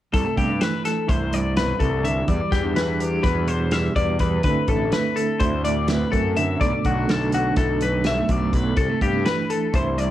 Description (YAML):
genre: math rock and midwest emo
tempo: 250 BPM (eighths)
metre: 9/8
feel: straight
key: unclear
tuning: A4 = 442 Hz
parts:
  - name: mellow electric guitar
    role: accompaniment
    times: 0.1-10.1 s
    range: E2 to F#4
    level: -25 LUFS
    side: right 4 dB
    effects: tremolo
  - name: twelve-string electric guitar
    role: arpeggios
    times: 0.1-10.1 s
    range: F#4 to E5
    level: -24 LUFS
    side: left 4 dB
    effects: spring reverb
  - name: fuzz picked electric bass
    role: bass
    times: 0.1-10.1 s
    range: A1 to G2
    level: -25 LUFS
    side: equal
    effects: overdrive
  - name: loose indie drum kit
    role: drums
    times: 0.1-10.1 s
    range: hi-hat, kick drum, snare drum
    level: -25 LUFS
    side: equal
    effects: cassette tape
room: little or no reverb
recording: home recording on cassette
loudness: -19 LUFS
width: side -13 dB against mid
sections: 0.1-10.1 A section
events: none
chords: 0.1 C69; 2.3 Em9; 4.5 D9; 6.6 Bm7; 8.8 C69